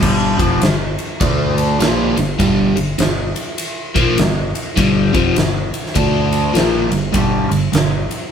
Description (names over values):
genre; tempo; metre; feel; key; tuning
blues rock power trio and southern rock; 101 BPM; 4/4; swing 62% on 8ths; G minor; A4 = 437 Hz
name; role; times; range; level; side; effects
crunchy overdriven guitar; riff; 0.0-8.0 s; F2 to D4; -16 LUFS; equal; phaser
growling fingered electric bass; bass; 0.0-8.1 s; F1 to D2; -23 LUFS; equal; overdrive
huge arena drum kit; drums; 0.0-8.2 s; crash cymbal, kick drum, ride cymbal, snare drum; -18 LUFS; right 1 dB; none
room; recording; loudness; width
moderate studio reverb, RT60 0.6 s; band playing live in one room; -14 LUFS; side -7 dB against mid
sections
0.0-8.3 A section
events
none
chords
0.0 G5; 1.2 D5; 1.8 Gm; 6.0 D5; 6.5 Gm